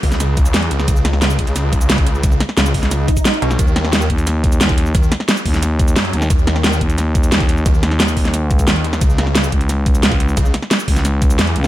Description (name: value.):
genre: dark technical drum and bass.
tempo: 177 BPM.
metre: 4/4.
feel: straight.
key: unclear.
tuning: A4 = 441 Hz.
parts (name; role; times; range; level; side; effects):
snarling distorted saw bass; bass; 0.0-11.5 s; Cb2 to Gb2; -17 LUFS; equal; distortion, tube saturation, sidechain pumping.
dubstep drum kit; drums; 0.0-11.7 s; cabasa, hi-hat, snare drum; -18 LUFS; equal; studio reverb.
electronic kick drum; drums; 0.0-11.3 s; none; -16 LUFS; equal; studio reverb.
swell; sound effects; 3.0-3.6 s; none; -24 LUFS; right 2 dB; none.
growling FM bass; bass; 4.1-11.7 s; Db2 to Eb2; -17 LUFS; equal; tube saturation.
room: digital ambience.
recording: none.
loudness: -13 LUFS.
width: side -14 dB against mid.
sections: 0.0-11.7 A section.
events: swell 3.0-3.6.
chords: none.